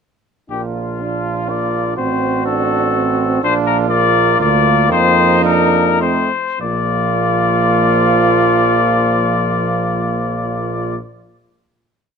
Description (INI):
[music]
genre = classical, brass quintet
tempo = 98-126 BPM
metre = 3/4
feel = rubato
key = Bb major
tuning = A4 = 437 Hz
[part]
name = warm cornet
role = melody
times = 0.5-11.0 s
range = F4 to D5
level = -17 LUFS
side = left 9 dB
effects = none
[part]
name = warm trumpet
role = second line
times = 0.5-11.0 s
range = Eb4 to F#4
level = -20 LUFS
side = right 9 dB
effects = none
[part]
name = clear trombone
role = accompaniment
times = 0.5-11.0 s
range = F3 to D4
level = -22 LUFS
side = right 5 dB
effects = none
[part]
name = mellow French horn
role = accompaniment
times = 0.5-11.0 s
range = A3 to D4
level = -22 LUFS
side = left 4 dB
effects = none
[part]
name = warm tuba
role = bass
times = 0.5-11.0 s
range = A1 to F2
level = -20 LUFS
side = right 4 dB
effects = none
[sound]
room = moderate large studio reverb, RT60 1.1 s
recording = minimal, uncompressed stereo recording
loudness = -13 LUFS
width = side -6 dB against mid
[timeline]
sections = 0.5-6.6 A section; 6.6-10.2 final chord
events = slowing down 2.7-6.6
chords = 0.5 Bb; 2.0 Am6; 3.4 Bb; 4.4 Bb/D; 4.9 F7sus4; 6.0 F7; 6.6 Bb